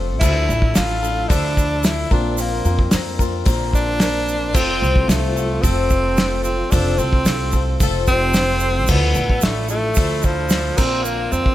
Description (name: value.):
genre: folk rock and heartland rock.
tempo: 111 BPM.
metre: 4/4.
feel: straight.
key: unclear.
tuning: A4 = 440 Hz.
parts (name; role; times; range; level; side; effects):
picked swing-style acoustic guitar; accompaniment; 0.0-11.5 s; Bb2 to Bb4; -25 LUFS; left 8 dB; none.
tonewheel organ; sustained chords; 0.0-11.5 s; F3 to E5; -31 LUFS; right 2 dB; slow rotary speaker, chorus vibrato.
upright bass; bass; 0.0-11.5 s; F1 to F2; -22 LUFS; equal; none.
clear tenor saxophone; melody; 0.2-11.5 s; F3 to F4; -21 LUFS; right 1 dB; none.
cloth-damped thuddy drum kit; drums; 0.2-11.5 s; crash cymbal, hi-hat, kick drum, snare drum; -20 LUFS; equal; none.
egg shaker; percussion; 0.2-11.4 s; none; -30 LUFS; right 8 dB; none.
dark upright piano; accompaniment; 4.5-11.4 s; D4 to D5; -33 LUFS; right 6 dB; none.
room: little or no reverb.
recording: none.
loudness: -16 LUFS.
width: side -14 dB against mid.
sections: 0.0-11.5 A section.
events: none.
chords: 0.2 Dmadd9; 2.1 Bbadd9; 4.5 F; 8.9 Dmadd9; 10.8 Bbadd9.